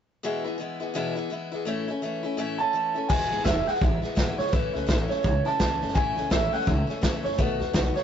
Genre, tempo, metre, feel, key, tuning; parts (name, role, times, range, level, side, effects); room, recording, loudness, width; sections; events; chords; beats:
rockabilly; 168 BPM; 4/4; swing 60% on 8ths; E major; A4 = 442 Hz
picked steel-string acoustic guitar; accompaniment; 0.2-8.0 s; E2 to F#4; -30 LUFS; left 3 dB
electric guitar through a small old amp; melody; 2.6-8.0 s; B4 to A5; -27 LUFS; right 3 dB
upright bass; bass; 3.1-8.0 s; E1 to D#2; -30 LUFS; equal
vintage drum kit; drums; 3.1-8.0 s; crash cymbal, hi-hat, kick drum, snare drum; -26 LUFS; equal
light reverb; rough rehearsal-room recording, nothing above 7.7 kHz; -23 LUFS; side -9 dB against mid
0.2-3.1 A section; 3.1-8.0 B section
0.2 E; 1.7 A; 3.1 E; 4.5 A; 7.4 B7
| 0.23 0.59 0.95 1.31 | 1.66 2.02 2.38 2.74 | 3.10 3.45 3.81 4.17 | 4.53 4.88 5.24 5.60 | 5.96 6.31 6.67 7.03 | 7.39 7.74